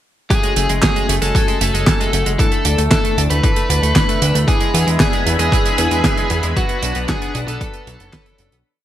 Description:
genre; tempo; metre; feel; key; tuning
italo disco; 115 BPM; 4/4; straight; F# minor; A4 = 440 Hz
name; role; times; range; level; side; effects
bluesy overdriven lead guitar; melody; 0.3-8.5 s; F#4 to B4; -21 LUFS; left 1 dB; distortion, digital delay
direct-recorded clean electric guitar; arpeggios; 0.3-8.6 s; E3 to B4; -25 LUFS; right 2 dB; ping-pong delay
mellow synth brass; stabs; 0.3-8.6 s; A3 to G#5; -25 LUFS; left 2 dB; chorus, phaser
damped 70s drum kit; drums; 0.3-8.6 s; handclaps, hi-hat, snare drum; -20 LUFS; right 2 dB; none
electronic kick drum; drums; 0.3-8.2 s; none; -19 LUFS; equal; none
fat analog bass; bass; 0.6-8.6 s; F#1 to E2; -18 LUFS; equal; none
lush unison pad; sustained chords; 4.5-8.6 s; D4 to B5; -24 LUFS; equal; chorus, vintage 12-bit sampler grit
room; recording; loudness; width
light reverb, studio reverb; bright 1980s-style digital production; -14 LUFS; side -12 dB against mid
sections
0.3-8.7 verse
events
fade-out 5.9-8.7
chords
0.3 F#madd9; 2.4 Dsus2; 4.5 E7; 6.6 Bm

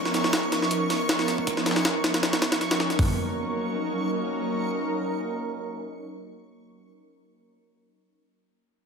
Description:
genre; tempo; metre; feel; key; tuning
drum and bass, jungle; 158 BPM; 4/4; swing 53% on 16ths; Eb minor; A4 = 440 Hz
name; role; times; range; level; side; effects
airy breathy pad; sustained chords; 0.0-6.8 s; F3 to Bb4; -28 LUFS; right 1 dB; chorus
backwards swelling texture; texture; 0.0-3.0 s; Db6; -33 LUFS; right 2 dB; built-in reverb
breakbeat sampler-style drum kit; drums; 0.1-2.9 s; hi-hat, snare drum; -34 LUFS; left 2 dB; high-pass filter on hats, high-pass filter on snare, high-pass filter on room
jungle sampler-style drum kit; drums; 0.1-3.1 s; hi-hat, kick drum, snare drum, toms; -24 LUFS; equal; high-pass filter on hats, high-pass filter on snare, high-pass filter on kick, high-pass filter on toms, high-pass filter on room
room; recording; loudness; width
moderate digital room reverb, RT60 1.0 s; none; -23 LUFS; side -5 dB against mid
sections
0.0-3.0 A section; 3.0-6.0 B section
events
none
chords
0.0 Db13; 3.0 Ebm7

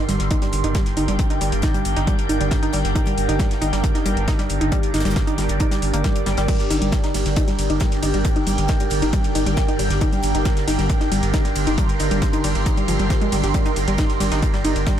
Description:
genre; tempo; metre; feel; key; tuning
driving peak-time techno; 136 BPM; 4/4; straight; G minor; A4 = 439 Hz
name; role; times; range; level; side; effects
swarming drone; drone; 0.0-15.0 s; G2 to D3; -29 LUFS; left 1 dB; built-in reverb, sidechain pumping
airy breathy pad; texture; 0.0-15.0 s; D4 to C6; -25 LUFS; right 2 dB; chorus, phaser, sidechain pumping
warbly dusty pluck; riff; 0.1-14.9 s; F3 to G4; -25 LUFS; left 1 dB; chorus, overdrive, sidechain pumping, dub echo
saturated sub bass; bass; 0.1-14.9 s; G1; -24 LUFS; equal; tube saturation, sidechain pumping, low-pass filter
damped 70s drum kit; drums; 0.1-15.0 s; hi-hat, snare drum; -36 LUFS; left 2 dB; high-pass filter on hats, high-pass filter on snare, high-pass filter on room, dub echo
techno drum kit; drums; 0.1-15.0 s; crash cymbal, hi-hat, ride cymbal; -31 LUFS; equal; sidechain pumping on hats, sidechain pumping on cymbals
electronic kick drum; drums; 0.3-15.0 s; none; -21 LUFS; equal; none
room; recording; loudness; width
light reverb; echo-heavy mix; -17 LUFS; side -10 dB against mid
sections
0.0-15.0 A section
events
none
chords
0.0 Gm

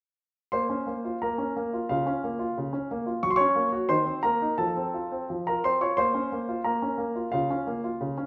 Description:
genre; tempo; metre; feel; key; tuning
classical-period piano sonatina; 89 BPM; 2/4; rubato; Bb minor; A4 = 441 Hz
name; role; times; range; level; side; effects
clear concert grand piano; solo; 0.5-8.3 s; Db3 to Db6; -28 LUFS; equal; none
room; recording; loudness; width
wet recital hall reverb, RT60 1.3 s; none; -28 LUFS; mono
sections
0.5-8.3 A section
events
none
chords
0.5 Bbm; 1.9 Bbm/Db; 3.2 Gb; 3.9 Cm7/Eb; 4.6 F; 6.0 Bbm; 7.3 Bbm/Db

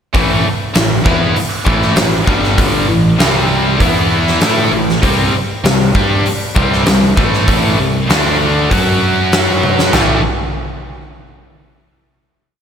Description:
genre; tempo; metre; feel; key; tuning
hard rock; 98 BPM; 4/4; straight; A dorian; A4 = 442 Hz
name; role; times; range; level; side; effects
heavy high-gain guitar; riff; 0.1-10.2 s; G2 to A4; -19 LUFS; equal; distortion, slapback echo
tight distorted guitar; riff; 0.1-10.2 s; G2 to A4; -18 LUFS; left 8 dB; distortion, slapback echo
tight distorted guitar; riff; 0.1-10.2 s; G2 to A4; -19 LUFS; right 8 dB; distortion, slapback echo
fuzz picked electric bass; bass; 0.1-10.2 s; G1 to A2; -18 LUFS; equal; overdrive
huge arena drum kit; drums; 0.1-10.1 s; crash cymbal, hi-hat, kick drum, snare drum, toms; -15 LUFS; equal; none
room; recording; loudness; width
moderate lush hall reverb, RT60 2.4 s; big arena sound; -10 LUFS; side -8 dB against mid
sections
0.1-9.9 riff; 9.9-12.4 final chord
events
drum fill 9.6-9.9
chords
0.1 A5; 2.3 G5; 2.9 A5; 3.2 C5; 3.8 E5; 4.4 A5; 5.0 C5; 7.2 A5; 7.8 C5; 8.1 D5; 8.7 F#5; 9.9 A5

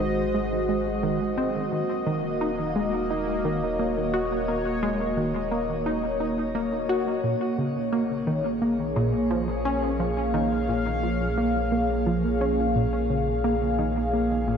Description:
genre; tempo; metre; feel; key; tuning
ambient, sequencer-driven space music; 87 BPM; 4/4; straight; Bb minor; A4 = 440 Hz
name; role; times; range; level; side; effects
sweeping resonant pad; sustained chords; 0.0-14.6 s; Ab3 to F5; -26 LUFS; equal; chorus, shimmer reverb
tight sequenced synth; riff; 0.0-14.6 s; Bb2 to Gb4; -27 LUFS; equal; chorus, analog delay, shimmer reverb
warm sub bass; bass; 0.0-14.6 s; Eb1 to Bb1; -33 LUFS; equal; none
room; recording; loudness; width
wet lush hall reverb, RT60 2.9 s; dreamy mix soaked in reverb; -23 LUFS; side -7 dB against mid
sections
0.0-14.6 A section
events
none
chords
0.0 Ab7; 1.7 Ebm7; 7.2 Bbm7

